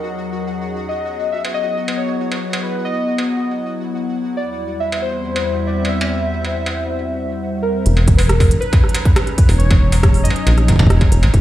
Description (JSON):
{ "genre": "IDM", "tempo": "138 BPM", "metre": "4/4", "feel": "straight", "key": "unclear", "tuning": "A4 = 439 Hz", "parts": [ { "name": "warbly lo-fi synth keys", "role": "melody", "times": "0.0-11.1 s", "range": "A#4 to E5", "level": "-24 LUFS", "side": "equal", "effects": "chorus, phaser, vintage 12-bit sampler grit, tape echo" }, { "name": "hollow soft pad", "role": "sustained chords", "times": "0.0-11.4 s", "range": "E2 to A#5", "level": "-23 LUFS", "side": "left 1 dB", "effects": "chorus" }, { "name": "pulsing gated texture", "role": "texture", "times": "0.0-7.9 s", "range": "F#4 to F#5", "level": "-33 LUFS", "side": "left 1 dB", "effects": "chorus, built-in reverb, sidechain pumping" }, { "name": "industrial drum kit", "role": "drums", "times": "1.4-11.4 s", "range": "hi-hat, rim click, struck metal", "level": "-23 LUFS", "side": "right 1 dB", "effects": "none" }, { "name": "deep acid bass", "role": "bass", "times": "7.9-11.4 s", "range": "E1 to A#1", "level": "-13 LUFS", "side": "equal", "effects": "none" }, { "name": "electronic kick drum", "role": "drums", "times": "8.1-11.4 s", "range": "none", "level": "-13 LUFS", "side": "equal", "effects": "none" } ], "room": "light reverb, digital ambience", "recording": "played on a big sound system in a bare room, stone room reverb", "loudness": "-15 LUFS", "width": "side -14 dB against mid", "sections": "0.0-7.9 A section; 7.9-11.4 B section", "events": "none", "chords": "0.0 D#m7/E; 0.9 Emaj9; 4.4 C/E; 7.9 D#m7/E", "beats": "0.03 0.47 | 0.90 1.34 1.77 2.21 | 2.64 3.08 3.51 3.95 | 4.38 4.82 5.25 5.68 | 6.12 6.55 6.99 7.42 | 7.86 8.29 8.73 9.16 | 9.60 10.03 10.47 10.90 | 11.34" }